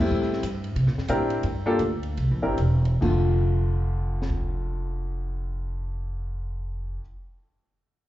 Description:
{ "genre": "jazz piano trio", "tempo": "132-189 BPM", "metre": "4/4", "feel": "swing 63% on 8ths", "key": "F major", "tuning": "A4 = 440 Hz", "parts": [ { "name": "warm upright piano", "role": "melody", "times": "0.0-7.0 s", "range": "F2 to Bb4", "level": "-27 LUFS", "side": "left 2 dB", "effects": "slapback echo" }, { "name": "upright bass", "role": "bass", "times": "0.0-7.0 s", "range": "E1 to C3", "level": "-25 LUFS", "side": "equal", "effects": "none" }, { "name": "compact cocktail drum kit", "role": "drums", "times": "0.0-4.4 s", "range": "crash cymbal, hi-hat, kick drum, ride cymbal, snare drum", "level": "-35 LUFS", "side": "equal", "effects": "none" } ], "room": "small room ambience", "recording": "live gig heard through the venue's PA, club reverb, nothing above 7.6 kHz", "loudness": "-23 LUFS", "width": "side -14 dB against mid", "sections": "0.1-3.0 A section; 3.0-6.7 B section", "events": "slowing down 0.1-3.0", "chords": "0.1 Am7; 0.8 C7; 1.4 G5; 2.2 C7; 3.0 F6" }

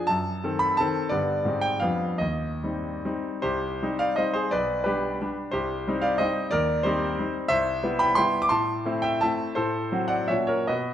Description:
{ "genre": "classical, romantic triple-time dance for piano with dotted rhythms", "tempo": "136-188 BPM", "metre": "3/4", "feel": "rubato", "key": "C minor", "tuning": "A4 = 444 Hz", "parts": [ { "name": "clear concert grand piano", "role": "solo", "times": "0.0-10.9 s", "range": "B1 to D6", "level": "-23 LUFS", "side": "equal", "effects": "none" } ], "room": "wet recital hall reverb, RT60 1.4 s", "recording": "dark, warm production", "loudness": "-23 LUFS", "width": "side -10 dB against mid", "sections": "0.0-3.4 A section; 3.4-10.9 A section", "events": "none", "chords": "0.1 F#dim7; 1.1 G; 1.4 Abmaj7; 1.8 G7/F; 2.2 Cm/Eb; 3.4 Cm; 4.5 G/B; 5.5 Cm; 6.5 Cm/Eb; 7.5 Cmaj7; 8.5 Am; 9.6 F#dim/A; 10.3 F#7/A#" }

